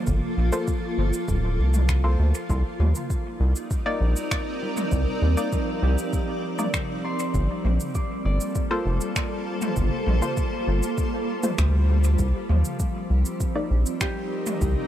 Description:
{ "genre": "ambient dub", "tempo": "99 BPM", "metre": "4/4", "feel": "straight", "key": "G minor", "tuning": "A4 = 439 Hz", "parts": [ { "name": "granular cloud pad", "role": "sustained chords", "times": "0.0-14.9 s", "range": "G3 to D5", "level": "-29 LUFS", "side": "right 1 dB", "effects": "built-in reverb" }, { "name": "concert harp", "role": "arpeggios", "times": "0.0-14.9 s", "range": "F3 to D6", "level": "-35 LUFS", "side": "left 2 dB", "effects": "dub echo" }, { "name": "filtered dub chord stab", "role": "stabs", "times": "0.0-14.9 s", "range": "Bb3 to D5", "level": "-32 LUFS", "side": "left 1 dB", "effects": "chorus, cassette tape, dub echo" }, { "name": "round analog bass", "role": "bass", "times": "0.1-14.8 s", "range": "D1 to Eb2", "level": "-20 LUFS", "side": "equal", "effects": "tube saturation" }, { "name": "electronic kick drum", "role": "drums", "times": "0.1-14.7 s", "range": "none", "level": "-28 LUFS", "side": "equal", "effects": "overdrive" }, { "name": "organic electronic drum kit", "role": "drums", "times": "0.1-14.7 s", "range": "cabasa, finger snaps, toms", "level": "-32 LUFS", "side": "equal", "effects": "overdrive, dub echo" } ], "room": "little or no reverb", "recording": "none", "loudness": "-22 LUFS", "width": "side -12 dB against mid", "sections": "0.0-14.9 A section", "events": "none", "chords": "0.0 Gm11; 2.5 Cm9; 7.3 Gm11; 12.2 Cm9" }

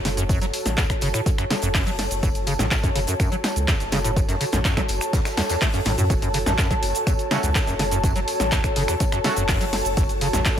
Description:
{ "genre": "acid house", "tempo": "124 BPM", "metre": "4/4", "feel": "straight", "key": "F# minor", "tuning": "A4 = 440 Hz", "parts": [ { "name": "saturated sub bass", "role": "bass", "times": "0.0-10.4 s", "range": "F#1 to F#2", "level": "-27 LUFS", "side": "equal", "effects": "sidechain pumping" }, { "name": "ethereal airy pad", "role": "texture", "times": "0.0-10.6 s", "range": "F#4 to A5", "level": "-27 LUFS", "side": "equal", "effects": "ensemble chorus, built-in reverb, sidechain pumping" }, { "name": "acid bass, square", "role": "riff", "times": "0.1-10.6 s", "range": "E2 to A3", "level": "-27 LUFS", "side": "equal", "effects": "tube saturation, analog chorus, dub echo" }, { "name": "huge arena drum kit", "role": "drums", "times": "0.1-10.6 s", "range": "hi-hat, snare drum, tambourine", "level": "-36 LUFS", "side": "left 1 dB", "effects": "sidechain pumping on hats, high-pass filter on hats, high-pass filter on snare, sidechain pumping on perc, high-pass filter on perc, high-pass filter on room" }, { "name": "punchy analog drum machine", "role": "drums", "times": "0.1-10.6 s", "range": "finger snaps, handclaps, hi-hat, shaker, snare drum", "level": "-26 LUFS", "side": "equal", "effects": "none" }, { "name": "electronic kick drum", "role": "drums", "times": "0.3-10.6 s", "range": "none", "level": "-23 LUFS", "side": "equal", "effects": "none" }, { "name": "band-passed chord stab", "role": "stabs", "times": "7.3-9.3 s", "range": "A3 to F#4", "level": "-32 LUFS", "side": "right 3 dB", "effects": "none" } ], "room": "light reverb, small room ambience", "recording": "none", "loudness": "-19 LUFS", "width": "side -9 dB against mid", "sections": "0.0-10.6 A section", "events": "none", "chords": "0.0 F#m" }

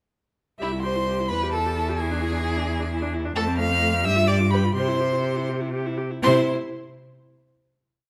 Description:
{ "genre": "quick classical-period movement for string quartet", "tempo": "79-88 BPM (dotted quarters)", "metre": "6/8", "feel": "straight", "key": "C major", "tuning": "A4 = 440 Hz", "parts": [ { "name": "rich violin", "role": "melody", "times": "0.6-6.5 s", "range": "E5 to F6", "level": "-31 LUFS", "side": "equal", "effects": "none" }, { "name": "clear violin", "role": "second line", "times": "0.6-6.5 s", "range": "E4 to F5", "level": "-28 LUFS", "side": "equal", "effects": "none" }, { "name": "warm viola", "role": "accompaniment", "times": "0.6-6.5 s", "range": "A3 to G4", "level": "-31 LUFS", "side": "equal", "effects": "none" }, { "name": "clear cello", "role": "bass", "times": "0.6-6.5 s", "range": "C2 to C3", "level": "-27 LUFS", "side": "equal", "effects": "none" } ], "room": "moderate recital hall reverb, RT60 1.3 s", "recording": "none", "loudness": "-24 LUFS", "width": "mono", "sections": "0.6-6.2 A section; 6.2-7.7 final chord", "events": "slowing down 2.7-6.2", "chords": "0.6 C; 1.3 Em; 2.0 E7; 3.4 F; 4.1 G6; 4.8 C" }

